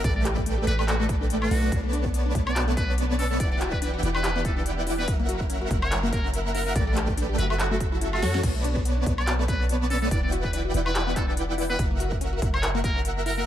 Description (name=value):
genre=future bass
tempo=143 BPM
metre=4/4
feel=swing 56% on 16ths, half-time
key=B minor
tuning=A4 = 440 Hz
part: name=trumpet with metal mute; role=melody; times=0.0-13.4 s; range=F#4 to D5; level=-32 LUFS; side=equal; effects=sidechain pumping, ping-pong delay
part: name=clear symphonic string section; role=sustained chords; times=0.0-8.4 s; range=E3 to A#4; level=-37 LUFS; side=equal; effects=sidechain pumping
part: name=dense compressed supersaw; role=riff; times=0.0-13.4 s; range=A3 to A5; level=-29 LUFS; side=right 1 dB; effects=sidechain pumping, tape echo
part: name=warm 808-style bass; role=bass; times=0.0-13.5 s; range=E1 to F#2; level=-28 LUFS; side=equal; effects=sidechain pumping
part: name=big-room dance drum kit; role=drums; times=0.0-13.4 s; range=crash cymbal, handclaps, hi-hat, snare drum, woodblock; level=-33 LUFS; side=left 1 dB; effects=overdrive
part: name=electronic kick drum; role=drums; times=0.0-12.9 s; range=none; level=-27 LUFS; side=equal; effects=overdrive
part: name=wide unison pluck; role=arpeggios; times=0.2-13.4 s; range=A3 to A#4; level=-34 LUFS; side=left 3 dB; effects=sidechain pumping, tape echo
room=light reverb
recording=none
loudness=-22 LUFS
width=side -11 dB against mid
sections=0.0-8.4 A section; 8.4-13.5 A section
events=drop 0.0-8.4, 8.4-13.5; drum fill 8.2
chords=0.0 A7sus4; 1.7 Bm9; 3.4 Em9; 5.1 F#7; 6.8 A7sus4; 7.6 F#m7; 8.4 Bm9; 10.1 Em9; 11.8 F#7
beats=| 0.04 0.46 0.88 1.30 | 1.72 2.14 2.56 2.98 | 3.40 3.82 4.24 4.66 | 5.08 5.50 5.92 6.34 | 6.76 7.18 7.59 8.02 | 8.43 8.85 9.27 9.69 | 10.11 10.53 10.95 11.37 | 11.79 12.21 12.63 13.05